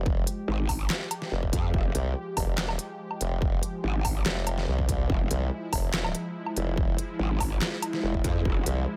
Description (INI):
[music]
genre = heavy wobble dubstep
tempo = 143 BPM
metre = 4/4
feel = half-time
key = F harmonic minor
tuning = A4 = 438 Hz
[part]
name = lush unison pad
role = sustained chords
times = 0.0-9.0 s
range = F3 to G4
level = -38 LUFS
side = equal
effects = chorus, phaser, sidechain pumping
[part]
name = formant-sweep wobble bass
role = bass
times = 0.0-8.9 s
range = F1 to C2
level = -31 LUFS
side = equal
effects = chorus, overdrive
[part]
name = electronic kick drum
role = drums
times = 0.1-8.5 s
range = none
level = -31 LUFS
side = equal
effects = small room reverb
[part]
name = dubstep drum kit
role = drums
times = 0.3-8.8 s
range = handclaps, hi-hat, snare drum, woodblock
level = -33 LUFS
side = equal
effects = small room reverb
[part]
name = growl bass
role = bass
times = 0.5-8.6 s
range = F1 to F2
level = -30 LUFS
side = equal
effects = distortion, chorus, overdrive
[sound]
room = little or no reverb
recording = none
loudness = -28 LUFS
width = mono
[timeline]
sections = 0.0-9.0 A section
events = none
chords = 0.0 Fmadd9